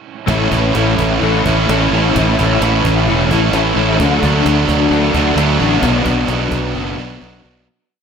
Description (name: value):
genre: rock, shoegaze and dream pop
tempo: 130 BPM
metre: 4/4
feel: straight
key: A major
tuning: A4 = 440 Hz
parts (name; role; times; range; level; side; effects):
- overdriven electric guitar; riff; 0.3-7.7 s; A2 to E4; -16 LUFS; right 8 dB; reverse reverb
- overdriven semi-hollow guitar; riff; 0.3-7.7 s; A2 to F#4; -17 LUFS; left 9 dB; ensemble chorus
- fuzz fingered electric bass; bass; 0.3-7.7 s; E1 to D2; -17 LUFS; equal; overdrive
- cajon; drums; 0.3-7.5 s; none; -26 LUFS; equal; none
room: moderate plate reverb, RT60 2.2 s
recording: dreamy mix soaked in reverb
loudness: -12 LUFS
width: side -6 dB against mid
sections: 0.3-7.7 verse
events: fade-out 5.8-7.7; break 6.7-7.7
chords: 0.3 A; 4.0 D; 5.8 Bm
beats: | 0.28 0.75 1.22 1.69 | 2.15 2.62 3.08 3.54 | 4.00 4.46 4.91 5.37 | 5.83 6.29 6.75 7.21